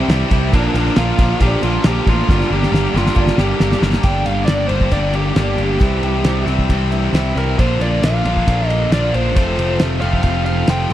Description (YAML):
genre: classic rock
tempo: 135 BPM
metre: 4/4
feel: straight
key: G dorian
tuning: A4 = 438 Hz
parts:
  - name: biting lead guitar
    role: melody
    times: 0.0-10.9 s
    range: D4 to G5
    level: -22 LUFS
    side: equal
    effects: overdrive
  - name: picked twelve-string acoustic guitar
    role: accompaniment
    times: 0.0-10.9 s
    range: G2 to Bb4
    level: -28 LUFS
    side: right 5 dB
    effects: none
  - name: cranked stack guitar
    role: riff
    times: 0.0-10.9 s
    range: F2 to G4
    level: -24 LUFS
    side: right 13 dB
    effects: overdrive
  - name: distorted electric guitar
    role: riff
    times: 0.0-10.9 s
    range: F2 to Bb4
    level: -22 LUFS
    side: left 14 dB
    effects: overdrive
  - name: picked electric bass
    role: bass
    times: 0.1-10.9 s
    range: F1 to C2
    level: -19 LUFS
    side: equal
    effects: none
  - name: cloth-damped thuddy drum kit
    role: drums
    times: 0.1-10.9 s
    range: kick drum, ride cymbal, snare drum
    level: -17 LUFS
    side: equal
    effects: none
room: little or no reverb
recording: dry, close 1970s-style studio recording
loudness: -14 LUFS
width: side -12 dB against mid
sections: 0.0-4.0 A section; 4.0-10.9 B section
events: drum fill 2.3-4.0; lead electric guitar solo 4.0-10.9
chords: 0.0 C; 0.5 Bb; 2.3 Gm; 5.8 C; 7.6 Bb; 9.4 F